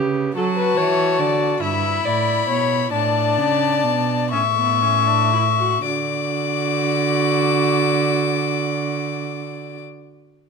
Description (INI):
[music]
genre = classical, baroque-style fugue for string quartet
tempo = 37-50 BPM (dotted quarters)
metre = 6/8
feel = straight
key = D major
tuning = A4 = 440 Hz
[part]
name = dark violin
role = second line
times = 0.0-9.8 s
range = A4 to E5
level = -24 LUFS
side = left 5 dB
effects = none
[part]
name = warm viola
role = accompaniment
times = 0.0-9.8 s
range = B3 to G4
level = -25 LUFS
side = right 2 dB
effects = none
[part]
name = rich cello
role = bass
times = 0.0-9.8 s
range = G2 to F#3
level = -23 LUFS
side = right 7 dB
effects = none
[part]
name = warm violin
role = melody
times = 0.4-9.8 s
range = A5 to D6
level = -22 LUFS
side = left 12 dB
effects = none
[sound]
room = moderate recital hall reverb, RT60 1.4 s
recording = close, detailed microphones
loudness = -17 LUFS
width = side -5 dB against mid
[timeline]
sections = 0.0-5.9 A section; 5.9-9.1 B section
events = slowing down 0.0-5.9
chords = 0.4 D; 1.6 Em7/G; 2.9 Asus4; 4.3 A; 5.9 D